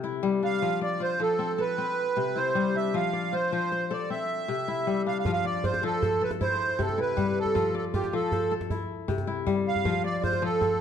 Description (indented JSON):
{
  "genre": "west african traditional, West African string and xylophone music",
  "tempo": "104 BPM (dotted quarters)",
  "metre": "12/8",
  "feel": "straight",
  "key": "F lydian",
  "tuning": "A4 = 440 Hz",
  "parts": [
    { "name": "kora", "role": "arpeggios", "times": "0.0-10.8 s", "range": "C3 to D5", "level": "-29 LUFS", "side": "left 6 dB", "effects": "none" },
    { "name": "accordion", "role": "melody", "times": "0.4-10.8 s", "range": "G4 to F5", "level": "-27 LUFS", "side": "right 4 dB", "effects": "light tremolo tuning" },
    { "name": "djembe", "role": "percussion", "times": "5.3-10.7 s", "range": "none", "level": "-32 LUFS", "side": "right 1 dB", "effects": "none" }
  ],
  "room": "moderate recital hall reverb, RT60 1.5 s",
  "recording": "dark, warm production",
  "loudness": "-25 LUFS",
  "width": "side -8 dB against mid",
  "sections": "0.0-5.3 A section; 5.3-10.8 A section",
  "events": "none",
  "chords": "0.0 C; 0.6 F; 1.8 C; 2.9 F; 4.1 C; 5.3 F; 6.4 C; 7.6 F; 8.7 C; 9.9 F"
}